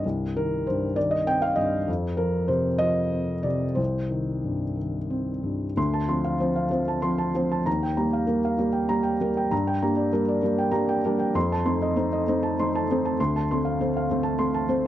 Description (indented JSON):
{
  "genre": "neoclassical minimalist piano",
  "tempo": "65 BPM (dotted quarters)",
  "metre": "6/8",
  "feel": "rubato",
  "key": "C dorian",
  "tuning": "A4 = 440 Hz",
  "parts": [
    { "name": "felt-muted upright piano", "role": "solo", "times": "0.0-14.9 s", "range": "C2 to C6", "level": "-22 LUFS", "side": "equal", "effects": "none" }
  ],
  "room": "light reverb",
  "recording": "dry, close 1970s-style studio recording",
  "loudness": "-22 LUFS",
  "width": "side -12 dB against mid",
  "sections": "0.0-5.8 A section; 5.8-14.9 B section",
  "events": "none",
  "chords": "0.0 Cm; 1.9 F5; 3.8 Cm; 5.8 Dm7; 7.7 Ebadd9; 9.5 Gm; 11.4 F7; 13.2 Dm7"
}